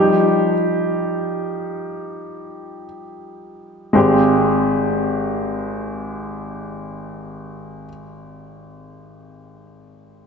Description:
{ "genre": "pop", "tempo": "free time", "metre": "none", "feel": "none", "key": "Ab major", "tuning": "A4 = 440 Hz", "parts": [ { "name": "clear baby grand piano", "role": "accompaniment", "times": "0.0-10.3 s", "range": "Ab1 to G4", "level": "-18 LUFS", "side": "equal", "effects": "none" } ], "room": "wet lush hall reverb, RT60 2.8 s", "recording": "dreamy mix soaked in reverb, nothing above 7.9 kHz", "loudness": "-17 LUFS", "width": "side -5 dB against mid", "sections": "0.0-4.0 A section; 4.0-8.3 B section", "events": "slowing down 0.0-4.0; grand piano solo 0.0-4.0", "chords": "0.0 Ebadd9; 4.0 Abmaj7" }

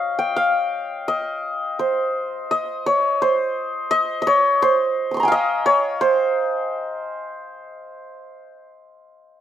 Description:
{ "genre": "indian classical", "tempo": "172 BPM", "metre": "4/4", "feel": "straight", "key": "C raga bhairavi", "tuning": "A4 = 440 Hz", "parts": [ { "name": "santur", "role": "solo", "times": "0.0-8.6 s", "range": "C5 to Eb6", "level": "-19 LUFS", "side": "equal", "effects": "slapback echo" } ], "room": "little or no reverb", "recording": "recorded outdoors, with no room sound", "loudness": "-18 LUFS", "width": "side -10 dB against mid", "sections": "0.0-6.0 A section; 6.0-8.8 B section", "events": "speeding up 0.0-8.8", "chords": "none" }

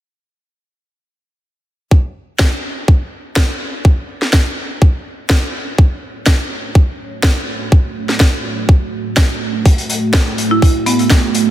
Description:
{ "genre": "bass house", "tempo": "124 BPM", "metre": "4/4", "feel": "swing 54% on 16ths", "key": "F# minor", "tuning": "A4 = 440 Hz", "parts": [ { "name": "deep dark ambient pad", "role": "sustained chords", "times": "5.6-11.5 s", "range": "A3 to C#5", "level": "-20 LUFS", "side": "right 3 dB", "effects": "chorus, built-in reverb, sidechain pumping" }, { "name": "electronic kick drum", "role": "drums", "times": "1.9-11.2 s", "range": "none", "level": "-10 LUFS", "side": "equal", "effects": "small room ambience" }, { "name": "electronic snare drum", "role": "drums", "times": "2.4-11.2 s", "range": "none", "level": "-19 LUFS", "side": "equal", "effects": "small room ambience" }, { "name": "raw garage drum kit", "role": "drums", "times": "9.7-11.5 s", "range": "hi-hat, snare drum", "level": "-21 LUFS", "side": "left 2 dB", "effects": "high-pass filter on hats, small room ambience, high-pass filter on snare, high-pass filter on room" }, { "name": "marimba with hard mallets", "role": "melody", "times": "10.5-11.1 s", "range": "B3 to E4", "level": "-16 LUFS", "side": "right 2 dB", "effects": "digital delay" } ], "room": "light reverb, small room ambience", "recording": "dense, heavily limited modern master", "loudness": "-12 LUFS", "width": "side -13 dB against mid", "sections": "1.9-11.5 A section", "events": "none", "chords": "1.9 F#m" }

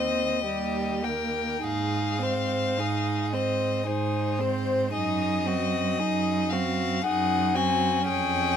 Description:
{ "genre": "classical, slow romantic movement for string quartet", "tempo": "50-58 BPM", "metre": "3/4", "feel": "rubato", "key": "Ab major", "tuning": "A4 = 440 Hz", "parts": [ { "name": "rich violin", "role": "melody", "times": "0.0-8.6 s", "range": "C5 to Ab5", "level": "-28 LUFS", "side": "left 9 dB", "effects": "none" }, { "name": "clear violin", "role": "second line", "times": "0.0-8.6 s", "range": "Gb4 to C5", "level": "-30 LUFS", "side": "left 3 dB", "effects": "none" }, { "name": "rich viola", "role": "accompaniment", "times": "0.0-8.6 s", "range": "G3 to Eb4", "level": "-30 LUFS", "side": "right 4 dB", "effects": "none" }, { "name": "rich cello", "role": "bass", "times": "0.0-8.6 s", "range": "Eb2 to Ab2", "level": "-30 LUFS", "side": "right 5 dB", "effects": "none" } ], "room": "light reverb", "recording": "minimal, uncompressed stereo recording", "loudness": "-24 LUFS", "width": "side -8 dB against mid", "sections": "0.0-8.6 A section", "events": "none", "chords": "0.4 Eb; 1.6 Ab; 4.9 Ab7/Gb" }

